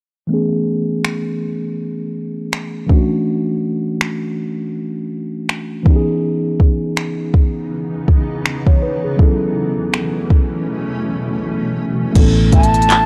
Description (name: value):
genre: contemporary R&B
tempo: 81 BPM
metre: 4/4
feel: swing 58% on 16ths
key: unclear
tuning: A4 = 440 Hz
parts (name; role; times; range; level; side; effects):
- mellow tine electric piano; accompaniment; 0.3-13.1 s; E3 to C#5; -22 LUFS; equal; low-pass filter
- smooth R&B drum kit; drums; 1.0-13.1 s; crash cymbal, finger snaps, handclaps, hi-hat, kick drum; -15 LUFS; equal; none
- granular cloud pad; sustained chords; 7.5-13.1 s; B2 to D#4; -25 LUFS; equal; built-in reverb, low-pass filter
- vintage muted fingered electric bass; bass; 12.2-13.1 s; A1; -17 LUFS; equal; none
- soft synth bell; texture; 12.5-13.1 s; E5; -31 LUFS; equal; chorus, analog delay
- breathy hollow jazz flute; melody; 12.6-13.1 s; A5; -16 LUFS; equal; none
room: digital ambience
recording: dry, gritty hardware recording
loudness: -17 LUFS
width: mono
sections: 0.3-12.2 A section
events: filter sweep 0.3-12.2; break 10.7-12.2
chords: 0.3 Amaj9; 2.9 Dmaj9; 5.9 C#m9; 9.2 B9sus4; 12.2 Aadd9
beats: | 0.30 1.04 1.78 2.53 | 3.27 4.01 4.75 5.49 | 6.23 6.97 7.71 8.45 | 9.19 9.93 10.67 11.41 | 12.15 12.90